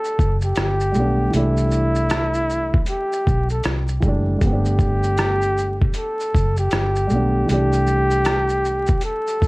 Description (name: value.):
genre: lo-fi hip hop.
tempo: 78 BPM.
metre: 4/4.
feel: swing 61% on 16ths.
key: G major.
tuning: A4 = 438 Hz.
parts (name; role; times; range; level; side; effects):
breathy flugelhorn; melody; 0.0-9.5 s; E4 to A4; -22 LUFS; equal; low-pass filter.
felt-muted upright piano; accompaniment; 0.0-9.5 s; E3 to G4; -24 LUFS; right 1 dB; low-pass filter.
dusty soul sampler-style drum kit; drums; 0.0-9.5 s; hi-hat, kick drum, rim click, shaker; -21 LUFS; equal; overdrive.
vintage muted fingered electric bass; bass; 0.2-9.5 s; F#1 to C2; -21 LUFS; equal; none.
room: light reverb.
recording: vinyl crackle.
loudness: -17 LUFS.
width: side -24 dB against mid.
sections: 0.0-9.5 A section.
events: none.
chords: 0.0 Gmaj7; 1.3 C6; 4.4 G; 7.5 C6.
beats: 0.56 | 1.33 2.10 2.87 3.64 | 4.41 5.18 5.95 6.72 | 7.49 8.26 9.03.